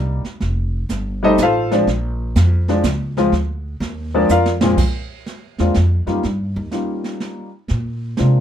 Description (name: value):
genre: jazz piano trio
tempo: 124 BPM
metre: 3/4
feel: swing 67% on 8ths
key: Bb mixolydian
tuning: A4 = 440 Hz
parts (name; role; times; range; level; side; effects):
- warm baby grand piano; melody; 0.0-8.4 s; Bb2 to F5; -17 LUFS; left 2 dB; none
- upright bass; bass; 0.0-8.4 s; F1 to C3; -19 LUFS; equal; none
- jazz brush drum kit; drums; 0.2-8.4 s; brushed snare drum, crash cymbal, hi-hat, kick drum, snare drum; -24 LUFS; right 3 dB; none
room: moderate club reverb, RT60 0.5 s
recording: minimal, uncompressed stereo recording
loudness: -16 LUFS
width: side -9 dB against mid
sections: 0.0-4.8 A section; 4.8-8.4 A section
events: grand piano solo 0.0-4.8; drum fill 4.3-4.8; upright bass solo 4.8-8.4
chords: 0.4 F; 1.9 Bb7; 4.8 N.C.; 6.2 Eb7; 7.7 Bb7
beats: | 0.41 0.90 1.38 | 1.87 2.35 2.84 | 3.32 3.81 4.29 | 4.78 5.26 5.75 | 6.24 6.72 7.21 | 7.69 8.18